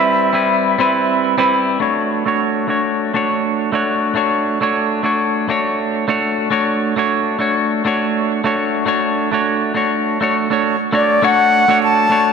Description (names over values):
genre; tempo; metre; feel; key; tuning
chillout; 102 BPM; 4/4; swing 57% on 16ths; D major; A4 = 441 Hz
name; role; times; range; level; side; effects
silver concert flute; melody; 0.0-1.2, 10.9-12.3 s; D5 to A5; -15 LUFS; left 1 dB; tape echo
clean electric guitar; accompaniment; 0.0-12.3 s; G3 to C#5; -15 LUFS; moving between left 4 dB and right 5 dB; auto-pan, low-pass filter, ping-pong delay
room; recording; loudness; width
wet lush hall reverb, RT60 2.5 s; dark, warm production; -14 LUFS; side -6 dB against mid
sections
0.0-1.8 A section; 1.8-11.2 B section; 11.2-12.3 C section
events
none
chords
0.0 Cmaj7; 1.8 Dmaj7